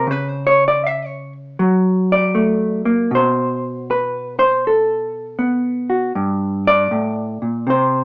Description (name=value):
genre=solo jazz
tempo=79 BPM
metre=4/4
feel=swing 66% on 8ths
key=unclear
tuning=A4 = 440 Hz
part: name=hollow-body jazz guitar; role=solo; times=0.0-8.0 s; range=G2 to E5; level=-15 LUFS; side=equal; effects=none
room=light reverb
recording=small speaker sound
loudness=-15 LUFS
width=side -26 dB against mid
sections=0.0-8.0 A section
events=hollow-body jazz guitar solo 0.0-8.0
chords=0.1 N.C.; 1.6 F#aug; 3.1 B5; 6.1 Gmadd9